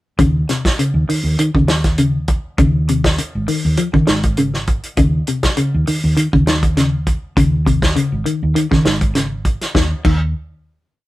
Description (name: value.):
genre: afrobeat.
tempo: 100 BPM.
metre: 4/4.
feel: swing 53% on 16ths.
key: unclear.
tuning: A4 = 439 Hz.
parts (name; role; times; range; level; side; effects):
clean electric guitar; arpeggios; 0.2-10.2 s; C3 to F3; -17 LUFS; left 1 dB; phaser.
hollow-body short-scale fingered electric bass; bass; 0.2-10.3 s; Ab1 to Eb3; -18 LUFS; equal; none.
warm soul drum kit; drums; 0.2-10.2 s; crash cymbal, hi-hat, kick drum, snare drum; -17 LUFS; equal; none.
room: light reverb.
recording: band playing live in one room.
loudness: -14 LUFS.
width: side -16 dB against mid.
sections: 0.2-9.7 groove; 9.7-11.1 final note.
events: none.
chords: 0.2 Dbsus2/Eb; 2.6 Db5; 5.0 Dbsus2/Eb; 7.4 Db5; 9.7 N.C..